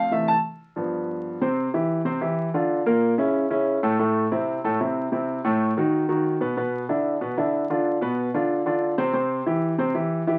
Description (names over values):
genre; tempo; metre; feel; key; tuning
jazz; 186 BPM; 4/4; straight; C major; A4 = 440 Hz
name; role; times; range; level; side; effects
warm concert grand piano; solo; 0.0-10.4 s; G2 to A5; -24 LUFS; equal; none
room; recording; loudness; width
moderate small room ambience, RT60 0.5 s; very old 78 rpm record, vinyl crackle; -24 LUFS; mono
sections
0.0-1.4 A section; 1.4-10.4 B section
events
grand piano solo 0.0-1.4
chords
0.1 C6; 0.8 G7; 1.4 Cadd9; 2.7 Bbm; 3.3 A; 4.0 Am; 5.3 F#m7b5; 5.9 B; 6.6 E5; 7.9 Bdim; 9.1 C